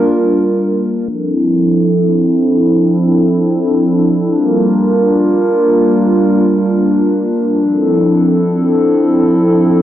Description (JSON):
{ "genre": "hip hop", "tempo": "free time", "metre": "none", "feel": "none", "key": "unclear", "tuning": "A4 = 440 Hz", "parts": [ { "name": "hollow soft pad", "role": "solo", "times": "0.0-9.8 s", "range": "F3 to Bb4", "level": "-10 LUFS", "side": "equal", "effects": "chorus, low-pass filter" } ], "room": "light reverb, digital ambience", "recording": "worn, warbling old tape, cassette tape, warbly pitch drift", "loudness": "-10 LUFS", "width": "side -12 dB against mid", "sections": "0.0-1.1 A section; 1.1-9.8 B section", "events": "filter sweep on analog synth pad 1.1-9.8", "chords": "0.0 Gm7; 1.1 Dm9; 4.4 Gm7; 7.6 Dm9" }